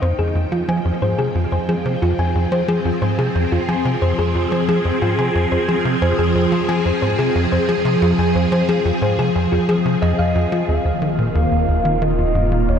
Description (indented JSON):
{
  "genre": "ambient, sequencer-driven space music",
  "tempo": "90 BPM",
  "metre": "4/4",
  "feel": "straight",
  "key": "F minor",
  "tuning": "A4 = 440 Hz",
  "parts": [
    { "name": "phased string machine", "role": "sustained chords", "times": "0.0-12.8 s", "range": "Eb3 to G5", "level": "-20 LUFS", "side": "equal", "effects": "ensemble chorus, phaser" },
    { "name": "thumb-piano-like synth pluck", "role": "arpeggios", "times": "0.0-10.7 s", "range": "F4 to Ab5", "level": "-23 LUFS", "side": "left 1 dB", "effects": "chorus, auto-pan, cassette tape, tape echo" },
    { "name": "tight sequencer bass", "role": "riff", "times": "0.0-12.8 s", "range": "Eb2 to F3", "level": "-20 LUFS", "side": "equal", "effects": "tape echo" },
    { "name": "pulse-width lead", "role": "melody", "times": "10.0-12.8 s", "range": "Db5 to F5", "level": "-26 LUFS", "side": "equal", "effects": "chorus, tape echo" },
    { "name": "warm sub bass", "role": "bass", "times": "10.7-12.8 s", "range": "Eb1", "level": "-24 LUFS", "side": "equal", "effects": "none" }
  ],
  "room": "wet huge ambient reverb, RT60 7.2 s",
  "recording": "dreamy mix soaked in reverb",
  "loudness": "-16 LUFS",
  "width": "side -8 dB against mid",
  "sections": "0.0-10.7 A section; 10.7-12.8 B section",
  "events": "fade-in on string machine 0.0-10.7",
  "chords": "0.0 Fm7; 10.7 Ebsus2"
}